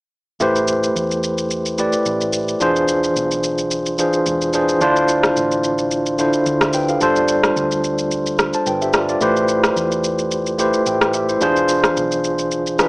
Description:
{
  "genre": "amapiano",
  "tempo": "109 BPM",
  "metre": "4/4",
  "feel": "swing 55% on 16ths",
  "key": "A minor",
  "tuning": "A4 = 440 Hz",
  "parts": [
    { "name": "tine electric piano", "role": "accompaniment", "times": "0.4-12.9 s", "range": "D3 to B5", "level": "-16 LUFS", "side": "equal", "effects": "medium stereo tremolo" },
    { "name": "hollow-body short-scale fingered electric bass", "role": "bass", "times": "0.4-12.9 s", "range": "E1 to E2", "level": "-31 LUFS", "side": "equal", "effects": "none" },
    { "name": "electronic shaker and rim click", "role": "drums", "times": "0.4-12.9 s", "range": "none", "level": "-21 LUFS", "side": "equal", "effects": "none" }
  ],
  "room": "moderate plate reverb, RT60 1.2 s",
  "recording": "dry, gritty hardware recording, small speaker sound",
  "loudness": "-15 LUFS",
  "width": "side -28 dB against mid",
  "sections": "0.4-12.9 A section",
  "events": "tine electric piano fill 12.5-12.9",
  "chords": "0.4 Am9; 2.6 E7b9b13; 4.8 Dm9; 7.0 G9sus4; 9.2 Am9; 11.4 E7b9b13",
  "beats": "| 0.41 0.96 1.51 2.06 | 2.61 3.16 3.71 4.26 | 4.81 5.36 5.91 6.46 | 7.01 7.56 8.11 8.66 | 9.21 9.76 10.31 10.87 | 11.42 11.97 12.52"
}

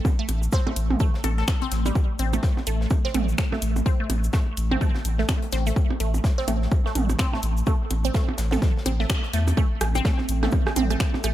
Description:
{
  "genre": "minimal techno",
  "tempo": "126 BPM",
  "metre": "4/4",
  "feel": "swing 59% on 16ths",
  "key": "A minor",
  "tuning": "A4 = 441 Hz",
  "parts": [
    { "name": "electronic kick drum", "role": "drums", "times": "0.0-11.1 s", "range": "none", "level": "-22 LUFS", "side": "equal", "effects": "overdrive" },
    { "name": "minimal click drum kit", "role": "percussion", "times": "0.0-11.3 s", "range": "percussion blips, rim click, toms", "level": "-30 LUFS", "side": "right 4 dB", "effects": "dub echo" },
    { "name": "swarming drone", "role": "texture", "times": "0.0-11.3 s", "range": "A3 to C4", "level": "-37 LUFS", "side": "left 1 dB", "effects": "built-in reverb, sidechain pumping" },
    { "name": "crisp fusion drum kit", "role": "drums", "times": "0.1-11.3 s", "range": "hi-hat, shaker, snare drum", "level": "-39 LUFS", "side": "left 2 dB", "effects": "sidechain pumping on hats, high-pass filter on hats, high-pass filter on snare, sidechain pumping on perc, high-pass filter on perc, high-pass filter on room, analog delay" },
    { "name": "resonant blip pluck", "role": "riff", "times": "0.2-11.3 s", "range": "G3 to A4", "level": "-30 LUFS", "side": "right 2 dB", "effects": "phaser, sidechain pumping, analog delay" },
    { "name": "saturated sub bass", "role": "bass", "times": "0.3-11.3 s", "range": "A1 to E2", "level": "-24 LUFS", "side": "equal", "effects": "sidechain pumping" },
    { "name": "house drum kit", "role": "drums", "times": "0.3-11.3 s", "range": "finger snaps, hi-hat, shaker", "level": "-31 LUFS", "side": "left 1 dB", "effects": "overdrive" },
    { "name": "warbly tape-like pad", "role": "texture", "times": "9.6-11.3 s", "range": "C4 to E5", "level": "-34 LUFS", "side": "right 4 dB", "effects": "chorus, built-in reverb, sidechain pumping" }
  ],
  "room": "little or no reverb",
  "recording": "echo-heavy mix",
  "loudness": "-21 LUFS",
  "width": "side -13 dB against mid",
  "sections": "0.0-9.6 A section; 9.6-11.3 B section",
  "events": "band accent 9.1; drop 9.6-11.3",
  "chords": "0.0 N.C.; 9.6 Am",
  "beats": "| 0.05 0.53 1.00 1.48 | 1.95 2.43 2.91 3.38 | 3.86 4.33 4.81 5.29 | 5.76 6.24 6.72 7.19 | 7.67 8.14 8.62 9.10 | 9.57 10.05 10.53 11.00"
}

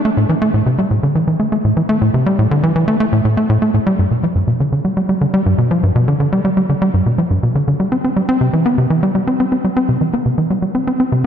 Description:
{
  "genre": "ambient",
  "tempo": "122 BPM",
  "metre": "4/4",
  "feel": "straight",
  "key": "A minor",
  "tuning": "A4 = 440 Hz",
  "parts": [
    { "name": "tight sequencer bass", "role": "solo", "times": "0.1-11.2 s", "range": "G2 to C4", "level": "-13 LUFS", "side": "equal", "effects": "ping-pong delay" }
  ],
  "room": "wet lush hall reverb, RT60 2.9 s",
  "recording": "dark, warm production",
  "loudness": "-13 LUFS",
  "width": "side -8 dB against mid",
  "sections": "0.0-11.3 A section",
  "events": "none",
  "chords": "none",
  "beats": "| 0.05 0.54 1.03 1.53 | 2.02 2.51 3.00 3.49 | 3.99 4.48 4.97 5.46 | 5.95 6.45 6.94 7.43 | 7.92 8.41 8.90 9.39 | 9.89 10.38 10.87"
}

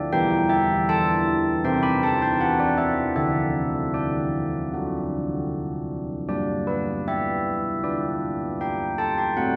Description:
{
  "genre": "classical, tune for church bells",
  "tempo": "78 BPM",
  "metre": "4/4",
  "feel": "straight",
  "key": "G major",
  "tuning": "A4 = 439 Hz",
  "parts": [
    { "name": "carillon bells", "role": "solo", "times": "0.0-9.6 s", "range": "D3 to B5", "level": "-24 LUFS", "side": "equal", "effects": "none" }
  ],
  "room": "wet concert hall reverb, RT60 1.9 s",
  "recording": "recorded in a church or concert hall",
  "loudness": "-24 LUFS",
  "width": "mono",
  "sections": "0.0-9.6 A section",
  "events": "none",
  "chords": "0.1 Em; 1.6 C; 3.2 D; 6.3 G",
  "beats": "| 0.12 0.89 1.64 2.39 | 3.16 3.94 4.72 5.50 | 6.28 7.07 7.84 8.60 | 9.37"
}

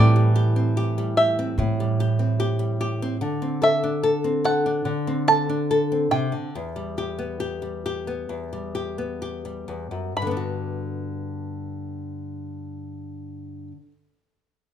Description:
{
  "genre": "folk",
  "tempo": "62-74 BPM",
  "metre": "4/4",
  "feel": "straight",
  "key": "G major",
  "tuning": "A4 = 440 Hz",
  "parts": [
    { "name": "bluegrass banjo", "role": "melody", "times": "0.0-13.7 s", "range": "D5 to B5", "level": "-21 LUFS", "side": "right 2 dB", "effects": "none" },
    { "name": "nylon-string guitar", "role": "accompaniment", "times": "0.0-13.9 s", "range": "E2 to A4", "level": "-24 LUFS", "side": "left 1 dB", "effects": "none" },
    { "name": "upright bass", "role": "bass", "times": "0.0-3.2 s", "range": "A2", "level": "-22 LUFS", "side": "right 2 dB", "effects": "none" }
  ],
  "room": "light reverb",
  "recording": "minimal, uncompressed stereo recording",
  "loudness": "-22 LUFS",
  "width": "side -9 dB against mid",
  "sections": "0.0-10.2 A section; 10.2-14.1 B section",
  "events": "slowing down 3.2-10.2",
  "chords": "0.0 Am7; 3.2 D7; 6.5 Em; 10.2 Gmaj7",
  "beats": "0.75 1.57 2.38 | 3.20 4.01 4.84 5.68 | 6.53 7.40 8.29 9.22 | 10.17 11.14 12.11 13.09"
}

